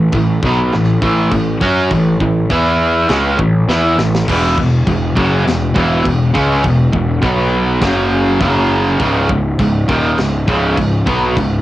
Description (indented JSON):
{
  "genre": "heavy metal",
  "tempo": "102 BPM",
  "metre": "4/4",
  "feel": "straight",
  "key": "unclear",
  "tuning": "A4 = 441 Hz",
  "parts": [
    { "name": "distorted electric guitar", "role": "riff", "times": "0.0-11.6 s", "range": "C#2 to F#4", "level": "-15 LUFS", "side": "right 2 dB", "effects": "distortion" },
    { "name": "tight distorted guitar", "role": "riff", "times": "0.0-11.6 s", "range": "C#2 to F#4", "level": "-20 LUFS", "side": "left 6 dB", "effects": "distortion" },
    { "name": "fuzz picked electric bass", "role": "bass", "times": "0.0-11.6 s", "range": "C#1 to F#2", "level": "-17 LUFS", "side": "equal", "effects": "overdrive" },
    { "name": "tight metal drum kit", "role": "drums", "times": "0.1-11.5 s", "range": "china cymbal, crash cymbal, kick drum, snare drum", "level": "-22 LUFS", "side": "equal", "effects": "cassette tape" }
  ],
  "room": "light reverb",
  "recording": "home recording on cassette",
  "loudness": "-12 LUFS",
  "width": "side -15 dB against mid",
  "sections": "0.0-11.6 A section",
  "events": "drum fill 3.7-4.3",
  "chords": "0.0 A5; 2.5 E5; 3.1 A5; 4.3 E5; 7.2 B5; 7.8 F#5; 9.0 C#5",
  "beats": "0.14 0.73 1.32 | 1.91 2.50 3.09 3.68 | 4.27 4.86 5.46 6.05 | 6.64 7.23 7.82 8.41 | 9.00 9.59 10.18 10.77 | 11.36"
}